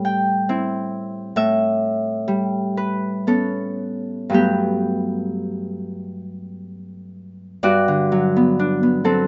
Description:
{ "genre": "classical, solo harp piece", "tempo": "48-71 BPM", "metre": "3/4", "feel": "rubato", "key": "G major", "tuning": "A4 = 440 Hz", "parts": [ { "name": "Celtic harp", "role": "solo", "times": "0.0-9.3 s", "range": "G2 to C6", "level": "-21 LUFS", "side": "equal", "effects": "none" } ], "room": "light reverb", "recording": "nothing above 7.5 kHz", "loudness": "-21 LUFS", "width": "mono", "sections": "0.0-7.6 A section; 7.6-9.3 A section", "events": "none", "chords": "0.0 Am7; 1.4 A9; 4.3 Gmaj9; 7.6 Gmaj7" }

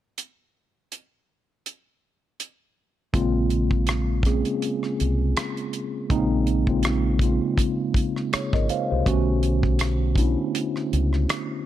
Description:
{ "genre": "R&B, neo-soul", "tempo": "81 BPM", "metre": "4/4", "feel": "swing 56% on 16ths", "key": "unclear", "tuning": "A4 = 438 Hz", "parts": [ { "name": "damped 70s drum kit", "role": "drums", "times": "0.2-11.5 s", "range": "hi-hat, kick drum, rim click", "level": "-25 LUFS", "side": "equal", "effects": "none" }, { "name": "mellow tine electric piano", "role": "accompaniment", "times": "3.1-11.7 s", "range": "Db3 to F5", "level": "-24 LUFS", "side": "equal", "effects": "slow stereo tremolo" }, { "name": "deep dub fingered electric bass", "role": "bass", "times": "3.1-11.2 s", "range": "Ab1 to C#2", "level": "-24 LUFS", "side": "equal", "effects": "none" } ], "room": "small room ambience", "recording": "dark, warm production", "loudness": "-21 LUFS", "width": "side -12 dB against mid", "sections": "0.2-3.1 A section; 3.1-11.7 B section", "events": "none", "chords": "0.2 N.C.; 3.1 Bbm9; 9.1 Bm9" }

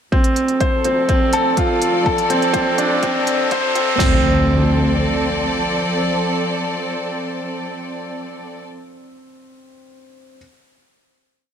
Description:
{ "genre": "piano and strings electronica", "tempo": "124 BPM", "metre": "4/4", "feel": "straight", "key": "D minor", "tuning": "A4 = 441 Hz", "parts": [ { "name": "warm studio string section", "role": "sustained chords", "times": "0.1-8.6 s", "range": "F3 to D5", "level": "-22 LUFS", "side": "right 1 dB", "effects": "sidechain pumping" }, { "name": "clear grand piano", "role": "riff", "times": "0.1-10.4 s", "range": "C4 to C5", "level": "-19 LUFS", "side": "equal", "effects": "tape echo" }, { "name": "clear studio double bass section", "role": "bass", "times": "0.1-5.4 s", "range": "D2 to F2", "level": "-24 LUFS", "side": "left 1 dB", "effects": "tube saturation, sidechain pumping, high-pass filter" }, { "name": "deep house drum kit", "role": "drums", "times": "0.1-4.1 s", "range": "crash cymbal, kick drum, snare drum", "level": "-20 LUFS", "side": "equal", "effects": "none" }, { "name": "riser and impact", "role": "sound effects", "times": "2.2-8.6 s", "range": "none", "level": "-25 LUFS", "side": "equal", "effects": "none" }, { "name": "electronic hi-hat", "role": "drums", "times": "0.2-3.9 s", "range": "none", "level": "-27 LUFS", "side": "right 2 dB", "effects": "none" } ], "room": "moderate echo chamber reverb, RT60 2.1 s", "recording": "high-pass filter", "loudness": "-15 LUFS", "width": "side -8 dB against mid", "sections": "0.1-4.0 build; 4.0-7.9 final chord", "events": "build-up 0.1-4.0; filter sweep 0.1-4.0; riser 2.2-4.0", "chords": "0.1 Dm7; 2.1 F6; 4.0 Dm7" }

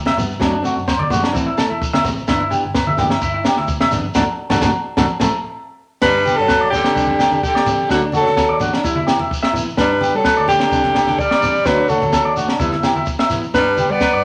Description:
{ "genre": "highlife guitar band", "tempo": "128 BPM", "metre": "4/4", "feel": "straight", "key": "G major", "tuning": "A4 = 443 Hz", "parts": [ { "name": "fingered electric bass", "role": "bass", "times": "0.0-14.2 s", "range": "F#1 to G3", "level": "-32 LUFS", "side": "equal", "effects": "none" }, { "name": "clean electric guitar", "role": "arpeggios", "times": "0.1-14.2 s", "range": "C4 to E5", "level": "-23 LUFS", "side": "equal", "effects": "spring reverb" }, { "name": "compact cocktail drum kit", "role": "drums", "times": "0.1-14.1 s", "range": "crash cymbal, kick drum, snare drum", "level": "-24 LUFS", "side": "equal", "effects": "none" }, { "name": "agogo bells", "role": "percussion", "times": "0.1-14.1 s", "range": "none", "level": "-28 LUFS", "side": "equal", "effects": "none" }, { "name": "congas", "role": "percussion", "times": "0.1-13.9 s", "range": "none", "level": "-28 LUFS", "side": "equal", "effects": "none" }, { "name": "nylon-string guitar", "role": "accompaniment", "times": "0.2-13.9 s", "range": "E3 to E4", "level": "-27 LUFS", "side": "equal", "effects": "none" }, { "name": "shekere", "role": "percussion", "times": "0.2-14.1 s", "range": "none", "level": "-32 LUFS", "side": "equal", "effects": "none" }, { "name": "clear alto saxophone", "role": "melody", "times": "6.0-14.2 s", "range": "F#4 to D5", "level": "-19 LUFS", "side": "equal", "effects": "none" }, { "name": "bright tenor saxophone", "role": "second line", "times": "6.0-14.2 s", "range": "D3 to B3", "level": "-25 LUFS", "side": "equal", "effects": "none" } ], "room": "moderate studio reverb, RT60 0.7 s", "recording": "none", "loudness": "-17 LUFS", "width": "mono", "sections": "0.0-6.0 A section; 6.0-14.2 B section", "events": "band accent 4.2-6.0", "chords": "0.4 D7/F#; 1.3 Am; 2.3 G6; 4.2 D7/F#; 5.1 Am; 6.0 G; 7.0 Csus2; 7.9 D; 8.8 Em; 9.8 G; 10.7 Csus2; 11.7 D; 12.6 Em; 13.5 G" }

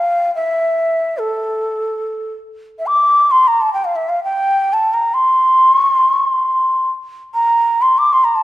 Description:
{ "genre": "Turkish makam ensemble", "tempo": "free time", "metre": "none", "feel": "none", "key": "A makam kurdi", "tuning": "A4 = 439 Hz", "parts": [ { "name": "breathy mellow ney", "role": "solo", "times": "0.0-8.4 s", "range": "A4 to D6", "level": "-13 LUFS", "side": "equal", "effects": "none" } ], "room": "moderate recital hall reverb, RT60 1.6 s", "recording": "none", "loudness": "-12 LUFS", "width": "side -15 dB against mid", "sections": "0.0-2.6 A section; 2.6-8.4 A section", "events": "none", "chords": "none" }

